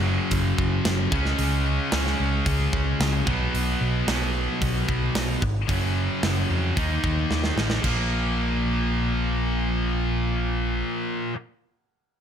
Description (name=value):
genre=hard rock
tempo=112 BPM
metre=4/4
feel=straight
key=Bb phrygian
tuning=A4 = 440 Hz
part: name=distorted electric guitar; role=riff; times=0.0-11.4 s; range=Gb2 to Eb4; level=-28 LUFS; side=right 13 dB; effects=distortion
part: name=scooped high-gain guitar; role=riff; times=0.0-11.4 s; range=Gb2 to Eb4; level=-28 LUFS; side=left 11 dB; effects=distortion
part: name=overdriven picked electric bass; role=bass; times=0.0-10.8 s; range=Gb1 to F2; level=-26 LUFS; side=equal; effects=none
part: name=tight metal drum kit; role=drums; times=0.3-8.0 s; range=crash cymbal, hi-hat, kick drum, snare drum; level=-28 LUFS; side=right 1 dB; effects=none
room=small room ambience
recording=none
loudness=-22 LUFS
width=side -8 dB against mid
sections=0.0-7.8 A section; 7.8-12.2 B section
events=drum fill 7.3-7.8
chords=0.0 Gb5; 1.1 Db5; 3.3 B5; 5.7 Gb5; 6.8 Eb5; 7.8 Bb5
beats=0.32 0.86 | 1.40 1.93 2.47 3.00 | 3.54 4.08 4.62 5.15 | 5.69 6.23 6.77 7.30 | 7.84 8.38 8.92 9.46 | 10.00 10.54 11.08